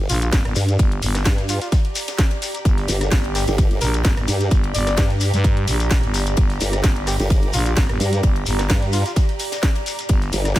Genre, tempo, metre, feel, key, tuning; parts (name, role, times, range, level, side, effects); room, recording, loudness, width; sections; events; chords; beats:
bass house; 129 BPM; 4/4; swing 54% on 16ths; G minor; A4 = 440 Hz
dark analog pad; sustained chords; 1.7-10.6 s; barely audible
formant-sweep wobble bass; bass; 0.0-10.5 s; G1 to G2; -20 LUFS; equal; chorus, tube saturation, sidechain pumping
granular cloud pad; texture; 0.0-10.6 s; G4 to Bb5; -29 LUFS; right 2 dB; built-in reverb, sidechain pumping
trumpet with bucket mute; melody; 0.1-9.1 s; F4 to D5; -30 LUFS; left 1 dB; ping-pong delay
growling FM bass; bass; 0.1-10.6 s; G1 to G2; -22 LUFS; equal; tube saturation, sidechain pumping
crisp fusion drum kit; drums; 0.1-10.6 s; hi-hat, ride cymbal, snare drum; -35 LUFS; left 2 dB
house drum kit; drums; 0.1-10.6 s; hi-hat, rim click, snare drum; -26 LUFS; equal
shekere; percussion; 0.1-10.6 s; -30 LUFS; left 6 dB
electronic kick drum; drums; 0.3-10.6 s; -18 LUFS; equal
small room reverb; -17 LUFS; side -15 dB against mid
0.0-10.6 A section
0.0 Gm
0.33 | 0.79 1.26 1.72 2.19 | 2.65 3.12 3.58 4.05 | 4.51 4.98 5.44 5.91 | 6.37 6.84 7.30 7.77 | 8.23 8.70 9.16 9.63 | 10.09 10.56